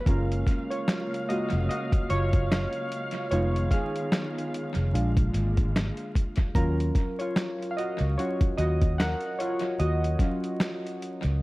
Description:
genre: lo-fi hip hop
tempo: 74 BPM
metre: 4/4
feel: swing 57% on 16ths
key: Eb minor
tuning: A4 = 440 Hz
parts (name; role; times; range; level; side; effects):
- warm analog keys; accompaniment; 0.0-11.4 s; Gb3 to Gb5; -30 LUFS; equal; chorus, cassette tape, low-pass filter
- warm studio string section; sustained chords; 0.0-6.5 s; Db3 to F5; -36 LUFS; equal; low-pass filter
- vintage muted fingered electric bass; bass; 0.1-11.4 s; F1 to Eb2; -26 LUFS; equal; none
- lo-fi sampler-style drum kit; drums; 0.1-11.4 s; finger snaps, hi-hat, kick drum, snare drum; -27 LUFS; equal; overdrive, tape echo
room: digital ambience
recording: echo-heavy mix, vinyl crackle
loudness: -24 LUFS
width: side -20 dB against mid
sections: 0.0-11.4 A section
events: synth keys solo 0.0-11.4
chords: 0.1 Gbmaj7; 3.3 Fm7b5; 4.9 Bb7; 6.6 Ebm7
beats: | 0.07 0.88 1.69 2.50 | 3.31 4.12 4.93 5.74 | 6.55 7.36 8.17 8.98 | 9.79 10.61 11.42

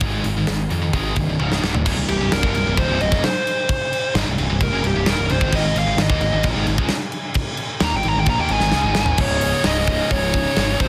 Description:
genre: heavy metal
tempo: 131 BPM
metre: 4/4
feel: straight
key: C phrygian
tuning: A4 = 438 Hz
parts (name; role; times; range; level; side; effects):
- heavy high-gain guitar; riff; 0.0-10.9 s; C2 to Bb3; -29 LUFS; equal; distortion
- scooped high-gain guitar; riff; 0.0-10.9 s; C2 to Bb3; -28 LUFS; equal; distortion
- fuzz picked electric bass; bass; 0.0-10.9 s; C1 to F2; -25 LUFS; equal; overdrive
- tight metal drum kit; drums; 0.0-10.9 s; crash cymbal, hi-hat, kick drum, snare drum, toms; -24 LUFS; equal; soft clipping on kick
- high-gain lead guitar; melody; 2.1-10.9 s; G4 to Bb5; -25 LUFS; equal; distortion, delay
room: little or no reverb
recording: dense, heavily limited modern master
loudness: -19 LUFS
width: mono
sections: 0.0-1.9 A section; 1.9-9.2 B section; 9.2-10.9 C section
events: drum fill 1.4-1.9, 8.7-9.2; lead electric guitar solo 1.9-9.2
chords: 0.0 Ab; 1.4 Db5; 1.6 D5; 1.9 Cm; 5.5 Ab5; 9.2 Db5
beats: | 0.01 0.47 0.93 1.39 | 1.85 2.31 2.77 3.23 | 3.69 4.15 4.61 5.07 | 5.53 5.99 6.44 6.90 | 7.36 7.82 8.28 8.74 | 9.20 9.65 10.11 10.57

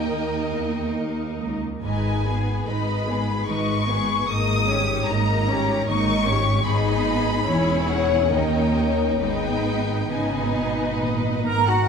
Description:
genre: classical, slow romantic movement for symphony orchestra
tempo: 66-77 BPM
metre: 3/4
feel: rubato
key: G# minor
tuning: A4 = 440 Hz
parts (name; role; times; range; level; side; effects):
- warm symphonic violin section; melody; 0.0-11.0 s; F#5 to D#6; -27 LUFS; left 4 dB; none
- warm symphonic violin section; second line; 0.0-11.9 s; G4 to A#5; -28 LUFS; left 1 dB; none
- rich studio viola section; accompaniment; 0.0-11.7 s; G#3 to E4; -28 LUFS; right 1 dB; none
- concert harp; arpeggios; 0.0-11.9 s; G#2 to C#5; -28 LUFS; left 5 dB; none
- rich symphonic double bass section; bass; 0.0-11.6 s; E1 to D#2; -28 LUFS; right 3 dB; none
- rich symphonic cello section; bass; 0.1-11.9 s; C#2 to C#3; -27 LUFS; right 1 dB; none
- mellow large flute ensemble; second line; 11.4-11.9 s; F#5 to A#5; -21 LUFS; right 4 dB; none
- clear oboe; second line; 11.5-11.9 s; F#4 to A#4; -28 LUFS; right 3 dB; none
- mellow clarinet; second line; 11.5-11.9 s; F#4 to A#4; -28 LUFS; left 1 dB; none
room: wet scoring stage reverb, RT60 1.8 s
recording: minimal, uncompressed stereo recording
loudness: -20 LUFS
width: side -6 dB against mid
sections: 0.0-11.9 A section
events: none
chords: 0.0 D#; 1.8 G#m; 4.3 D#7/G#; 6.7 G#m; 7.5 C#m/E; 8.3 D#7; 9.2 G#m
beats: 0.09 0.97 | 1.83 2.67 3.48 | 4.30 5.09 5.88 | 6.66 7.48 8.33 | 9.20 10.10 11.01

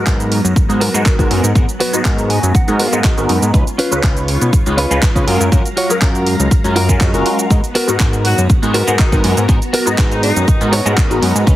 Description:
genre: filtered disco house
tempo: 121 BPM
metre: 4/4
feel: swing 53% on 16ths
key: G# dorian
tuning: A4 = 440 Hz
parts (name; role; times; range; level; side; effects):
- funky polysynth comp; accompaniment; 0.0-11.6 s; F#3 to A#5; -19 LUFS; left 1 dB; chorus, phaser, sidechain pumping, low-pass filter
- string machine, full ensemble; sustained chords; 0.0-11.6 s; F#3 to A#5; -24 LUFS; equal; ensemble chorus, sidechain pumping, low-pass filter
- fat analog bass; bass; 0.0-11.6 s; F#1 to C#3; -17 LUFS; equal; sidechain pumping, low-pass filter
- direct-recorded clean electric guitar; riff; 0.1-11.4 s; B3 to G#5; -20 LUFS; equal; sidechain pumping, low-pass filter
- electronic kick drum; drums; 0.1-11.6 s; none; -13 LUFS; equal; none
- house drum kit; drums; 0.1-11.6 s; handclaps, hi-hat, shaker; -21 LUFS; right 2 dB; sidechain pumping on hats, sidechain pumping on perc
- bright horn section; melody; 8.2-10.7 s; D#3 to F#4; -22 LUFS; left 1 dB; sidechain pumping, low-pass filter
room: light reverb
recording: heavily compressed radio sound, multiband compression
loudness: -11 LUFS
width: side -14 dB against mid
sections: 0.0-11.6 A section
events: filter sweep 0.0-11.6; clean electric guitar fill 2.0-3.5, 6.8-7.5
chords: 0.0 G#m9; 3.5 C#7; 5.3 F#maj7; 7.5 G#m9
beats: 0.07 0.56 1.06 | 1.55 2.05 2.55 3.04 | 3.54 4.03 4.53 5.03 | 5.52 6.02 6.51 7.01 | 7.50 8.00 8.50 8.99 | 9.49 9.98 10.48 10.98 | 11.47

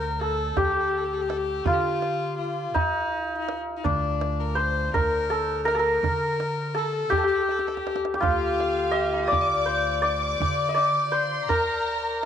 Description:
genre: Persian modal ensemble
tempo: 55 BPM (dotted quarters)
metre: 6/8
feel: straight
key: D dastgah shur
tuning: A4 = 436 Hz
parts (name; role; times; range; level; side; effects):
- santur; melody; 0.0-12.3 s; D4 to Eb5+45c; -24 LUFS; equal; none
- rich violin; second line; 0.0-12.3 s; D4 to Eb5+45c; -32 LUFS; left 8 dB; none
- upright bass; bass; 0.0-12.3 s; D2 to D3; -33 LUFS; right 1 dB; none
- tombak; percussion; 0.2-12.3 s; none; -30 LUFS; right 5 dB; none
- clear studio violin section; second line; 8.2-12.3 s; F5 to Eb6+45c; -31 LUFS; right 1 dB; none
room: wet spring reverb, RT60 1.6 s, small room ambience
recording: 1960s-style stereo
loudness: -22 LUFS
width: side -9 dB against mid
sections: 0.0-12.3 A section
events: drum fill 7.5-8.2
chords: none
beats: 0.56 | 1.66 2.75 | 3.85 4.94 | 6.04 7.13 | 8.22 9.32 | 10.41 11.50

